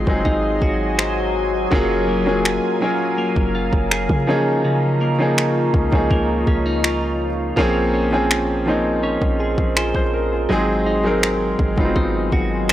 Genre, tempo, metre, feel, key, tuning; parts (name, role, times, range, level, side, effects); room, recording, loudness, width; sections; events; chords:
contemporary R&B; 82 BPM; 4/4; straight; Db major; A4 = 440 Hz
clear baby grand piano; accompaniment; 0.0-12.7 s; F3 to C5; -20 LUFS; equal
deep dark ambient pad; sustained chords; 0.0-12.7 s; Gb3 to Db6; -25 LUFS; left 1 dB; chorus, built-in reverb, sidechain pumping
twelve-string electric guitar; arpeggios; 0.0-12.7 s; Db3 to C5; -25 LUFS; right 1 dB; spring reverb, analog delay
warm 808-style bass; bass; 0.0-12.7 s; Gb1 to Db3; -25 LUFS; equal
smooth R&B drum kit; drums; 0.1-12.7 s; finger snaps, kick drum; -20 LUFS; equal; overdrive
little or no reverb; dry, gritty hardware recording, transformer saturation; -16 LUFS; side -13 dB against mid
0.0-12.7 A section
0.0 Ab7; 1.7 Gbmaj9; 4.3 Db69; 7.6 Bbm9; 10.5 Ab7